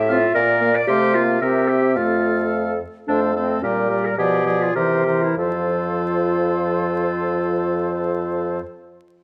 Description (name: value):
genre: quick classical-period movement for wind quintet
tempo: 95-114 BPM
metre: 2/4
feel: rubato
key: F major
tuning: A4 = 438 Hz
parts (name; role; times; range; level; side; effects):
- silver concert flute; melody; 0.0-8.6 s; G4 to E5; -28 LUFS; equal; none
- clear bassoon; bass; 0.0-8.6 s; F2 to C3; -26 LUFS; equal; none
- clear oboe; second line; 0.1-8.6 s; G#4 to F5; -29 LUFS; equal; none
- bright clarinet; accompaniment; 0.1-8.6 s; C4 to D5; -25 LUFS; equal; none
- warm French horn; accompaniment; 0.1-8.6 s; E3 to C4; -28 LUFS; equal; none
room: moderate recital hall reverb, RT60 1.4 s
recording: close, detailed microphones, vinyl crackle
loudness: -20 LUFS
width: mono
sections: 0.0-3.1 A section; 3.1-5.4 B section; 5.4-7.8 C section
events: slowing down 2.5-5.4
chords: 0.3 Bb; 0.9 F/C; 1.4 C7; 2.0 F; 3.6 Gm/Bb; 4.2 Bdim7; 4.8 C7; 5.4 F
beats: 0.35 | 0.88 1.41 | 1.96 2.52 | 3.08 3.63 | 4.18 4.75 | 5.37 5.99 | 6.61 7.23